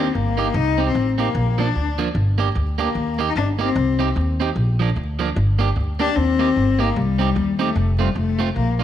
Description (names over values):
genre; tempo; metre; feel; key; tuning
ska; 150 BPM; 4/4; swing 59% on 8ths; Bb major; A4 = 442 Hz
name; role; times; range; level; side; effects
rich cello; melody; 0.0-8.8 s; G3 to Eb4; -21 LUFS; left 6 dB; none
electric guitar at the edge of break-up; accompaniment; 0.0-8.8 s; F3 to G4; -24 LUFS; right 7 dB; none
upright bass; bass; 0.0-8.8 s; F1 to Eb2; -21 LUFS; equal; none
room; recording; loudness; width
moderate echo chamber reverb, RT60 1.4 s, studio ambience; 1960s-style stereo with parts hard left and right, vinyl crackle; -18 LUFS; side -10 dB against mid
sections
0.0-8.6 A section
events
none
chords
0.0 Eb; 0.5 Cm; 1.3 Bb; 2.1 Gm; 3.0 Eb; 3.8 Cm; 4.6 Bb; 5.4 Gm; 6.2 Eb; 7.0 Cm; 7.8 F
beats
0.14 | 0.54 0.94 1.35 1.75 | 2.15 2.55 2.95 3.35 | 3.75 4.15 4.55 4.96 | 5.36 5.75 6.16 6.55 | 6.95 7.35 7.75 8.15 | 8.55